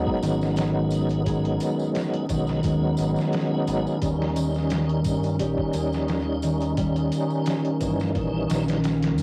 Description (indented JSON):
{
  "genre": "trip hop",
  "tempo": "87 BPM",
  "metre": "4/4",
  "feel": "swing 54% on 16ths",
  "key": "G# minor",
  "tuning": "A4 = 440 Hz",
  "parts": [
    { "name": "tonewheel organ", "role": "accompaniment", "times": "0.0-8.8 s", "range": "E3 to D#4", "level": "-29 LUFS", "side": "equal", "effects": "overdrive, chorus vibrato, slow rotary speaker, tremolo, cassette tape, tape echo" },
    { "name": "warbly tape-like pad", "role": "sustained chords", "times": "0.0-9.2 s", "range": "C#4", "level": "-34 LUFS", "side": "equal", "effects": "chorus, built-in reverb, cassette tape" },
    { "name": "concert harp", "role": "arpeggios", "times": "0.0-9.2 s", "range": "D#3 to G#4", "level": "-29 LUFS", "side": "equal", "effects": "vintage 12-bit sampler grit, cassette tape, tape echo" },
    { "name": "deep dub fingered electric bass", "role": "bass", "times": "0.0-9.2 s", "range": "G#1 to G2", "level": "-33 LUFS", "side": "equal", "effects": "none" },
    { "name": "wind-like tuned noise texture", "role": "texture", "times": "0.1-9.2 s", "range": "A#3 to A#4", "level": "-41 LUFS", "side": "equal", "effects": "none" },
    { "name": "trip hop sampler-style drum kit", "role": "drums", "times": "0.1-9.2 s", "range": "hi-hat, kick drum, snare drum", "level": "-33 LUFS", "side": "equal", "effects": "cassette tape" },
    { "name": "tambourine", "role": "percussion", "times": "0.2-9.2 s", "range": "none", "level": "-48 LUFS", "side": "equal", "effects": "none" }
  ],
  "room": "light reverb",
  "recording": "home recording on cassette, vinyl crackle",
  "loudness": "-24 LUFS",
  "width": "mono",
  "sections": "0.0-9.2 A section",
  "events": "none",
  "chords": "0.0 G#m7; 4.0 D#7b9"
}